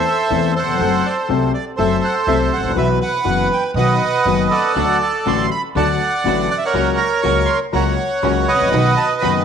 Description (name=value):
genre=tango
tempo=121 BPM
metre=4/4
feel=rubato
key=unclear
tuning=A4 = 442 Hz
part: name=bandoneon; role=melody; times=0.0-9.4 s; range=A4 to C#6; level=-17 LUFS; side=right 3 dB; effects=slapback echo
part: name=warm concert grand piano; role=accompaniment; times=0.3-9.4 s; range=F#1 to A4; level=-20 LUFS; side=left 9 dB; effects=none
part: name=upright bass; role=bass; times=0.3-9.4 s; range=F#1 to E2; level=-23 LUFS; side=right 2 dB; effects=none
part: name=rich studio string section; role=stabs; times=4.7-9.4 s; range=C#4 to B4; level=-26 LUFS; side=right 9 dB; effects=slapback echo
room=moderate plate reverb, RT60 2.5 s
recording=1960s-style stereo with parts hard left and right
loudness=-14 LUFS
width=side -7 dB against mid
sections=0.0-9.4 A section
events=none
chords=0.0 Am; 0.8 F#dim; 2.8 Bsus4; 3.8 B; 4.8 D; 6.7 F#/C#; 8.7 B